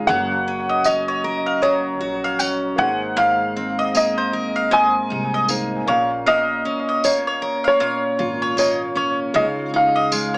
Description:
acoustic pop; 78 BPM; 4/4; swing 60% on 16ths; A4 = 445 Hz
dark upright piano; melody; 0.0-10.4 s; Db5 to Ab5; -22 LUFS; equal; tape echo
dark baby grand piano; accompaniment; 0.0-10.4 s; Ab3 to Db5; -34 LUFS; equal
picked steel-string acoustic guitar; accompaniment; 0.0-10.4 s; Ab2 to Bb4; -28 LUFS; equal
upright bass; bass; 0.0-10.4 s; Gb1 to Db2; -36 LUFS; equal
bowl-back mandolin; arpeggios; 0.1-10.4 s; C5 to Ab5; -27 LUFS; equal; tape echo
tambourine; percussion; 0.8-10.3 s; -28 LUFS; equal
moderate studio reverb, RT60 0.6 s; small speaker sound; -20 LUFS; mono
0.0-10.4 A section
0.1 Gb; 2.8 Abadd9; 5.9 Bbm; 9.4 Dbadd9

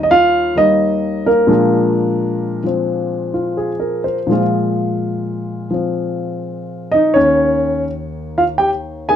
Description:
solo jazz; 85 BPM; 4/4; swing 68% on 8ths, rubato; A4 = 440 Hz
warm baby grand piano; solo; 0.0-9.2 s; Eb2 to Ab5; -14 LUFS; equal
light reverb; dark, warm production; -14 LUFS; side -9 dB against mid
0.0-9.2 A section
0.0 Eb7; 1.5 Bb7; 7.2 Eb7(no3)

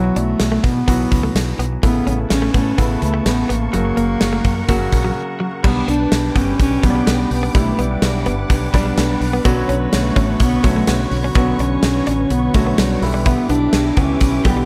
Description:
1980s-style pop; 126 BPM; 4/4; straight; A4 = 439 Hz
mellow bass clarinet; melody; 0.0-14.7 s; F#3 to D4; -22 LUFS; equal
clear grand piano; accompaniment; 0.0-14.7 s; C#3 to G4; -26 LUFS; equal
direct-recorded clean electric guitar; riff; 0.0-14.6 s; F#3 to E4; -28 LUFS; equal; lush chorus, slapback echo
woody fretless electric bass; bass; 0.0-14.6 s; F#1 to B2; -23 LUFS; equal
gated 80s drum kit; drums; 0.2-14.6 s; crash cymbal, hi-hat, kick drum, snare drum, tambourine; -21 LUFS; equal
soft string machine; sustained chords; 1.8-14.7 s; G4 to D6; -32 LUFS; equal; ensemble chorus
mellow synth brass; stabs; 5.6-14.7 s; D3 to C#5; -30 LUFS; equal; chorus
little or no reverb; -17 LUFS; mono
0.0-5.6 A section; 5.6-14.7 B section
break 5.2-5.6
0.0 Esus2/B; 1.8 Aadd9; 3.7 F#; 5.6 G; 9.5 Bmadd9; 13.0 Em7/B

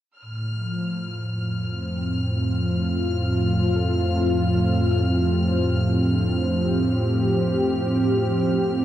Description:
ambient; 76 BPM; 3/4; straight; A4 = 440 Hz
warm analog pad; sustained chords; 0.2-8.8 s; A2 to G4; -21 LUFS; equal; chorus
deep rumbling drone; bass; 1.5-8.8 s; F2; -28 LUFS; equal; built-in reverb
clear chamber violin section; texture; 0.2-8.8 s; F6; -34 LUFS; left 3 dB; shimmer reverb
muted felt-like synth keys; arpeggios; 3.8-8.8 s; F3 to A4; -34 LUFS; right 2 dB
moderate spring reverb, RT60 2.9 s; echo-heavy mix; -20 LUFS; side -12 dB against mid
0.2-8.8 A section
filter sweep on analog synth pad 0.2-8.8
0.2 F

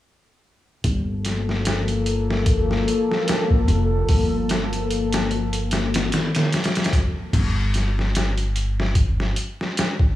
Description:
trip hop; 74 BPM; 4/4; swing 56% on 16ths; G minor; A4 = 441 Hz
warbly tape-like pad; sustained chords; 1.3-7.3 s; F3 to A4; -24 LUFS; left 2 dB; chorus, built-in reverb
upright bass; bass; 0.8-9.3 s; F1 to G1; -23 LUFS; equal
trip hop sampler-style drum kit; drums; 0.8-10.2 s; crash cymbal, hi-hat, kick drum, snare drum; -22 LUFS; equal; small room ambience
light reverb; small room ambience; -19 LUFS; side -14 dB against mid
0.8-7.3 A section; 7.3-10.2 B section
0.8 Gm9; 7.3 N.C.

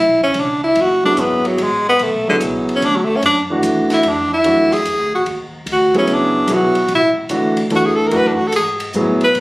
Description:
modal jazz; 146 BPM; 3/4; swing 67% on 8ths; A4 = 439 Hz
breathy tenor saxophone; melody; 0.0-9.4 s; D3 to B4; -14 LUFS; equal
upright bass; bass; 0.0-9.4 s; F#1 to B2; -28 LUFS; equal
compact cocktail drum kit; drums; 0.2-9.4 s; hi-hat, kick drum, ride cymbal, snare drum; -30 LUFS; left 1 dB
warm grand piano; accompaniment; 1.0-9.2 s; E3 to A4; -18 LUFS; equal
light reverb; recorded on a phone in the room, club reverb; -13 LUFS; side -20 dB against mid
0.0-9.4 A section
tenor saxophone solo 0.0-9.4
0.0 Bm9; 4.4 Dadd9

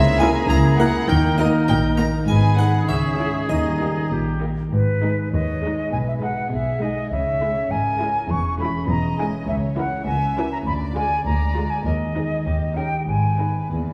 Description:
cinematic, playful, whimsical film cue; 100 BPM; 2/4; straight; G# minor; A4 = 442 Hz
harpsichord; melody; 0.0-4.1 s; D#5 to A#5; -33 LUFS; equal
bright concert flute; second line; 0.0-13.7 s; B4 to C#6; -28 LUFS; equal
dark clarinet; second line; 0.0-4.4 s; C#4 to E4; -30 LUFS; equal
warm chamber violin section; second line; 0.0-13.9 s; G4 to A#5; -32 LUFS; equal
warm oboe; second line; 0.0-4.4 s; G4 to A#4; -31 LUFS; equal
mellow French horn section; sustained chords; 0.0-4.4 s; G3 to E4; -30 LUFS; equal
concert harp; arpeggios; 0.0-13.9 s; G#2 to A#5; -28 LUFS; equal
dark studio cello section; bass; 0.0-13.9 s; C#2 to D#3; -28 LUFS; equal
dark studio double bass section; bass; 0.0-13.9 s; E1 to D#2; -28 LUFS; equal
dark studio violin section; melody; 0.2-13.6 s; G4 to A#4; -37 LUFS; equal
warm studio viola section; accompaniment; 0.2-13.6 s; E3 to F4; -31 LUFS; equal
wet scoring stage reverb, RT60 2.0 s; -21 LUFS; mono
0.0-4.7 A section; 4.7-13.9 B section
0.0 A#m7b5/C#; 1.1 D#5; 2.3 G#m; 2.9 C#m; 3.5 D#; 4.7 G#m; 5.9 G#m/B; 7.1 C#m; 8.3 C#m/E; 9.5 A#dim/C#; 10.7 Ddim; 11.9 G#m/D#; 12.5 D#7; 13.1 G#m

